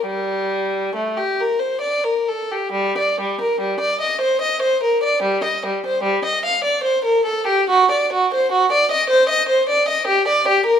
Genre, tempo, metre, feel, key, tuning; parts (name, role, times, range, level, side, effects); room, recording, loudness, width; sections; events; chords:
classical, baroque-style suite movement for unaccompanied violin; 62-79 BPM; 3/4; rubato; G minor; A4 = 439 Hz
warm violin; solo; 0.0-10.8 s; G3 to F5; -16 LUFS; equal
moderate recital hall reverb, RT60 1.5 s; -16 LUFS; side -8 dB against mid
0.0-2.8 A section; 2.8-10.8 B section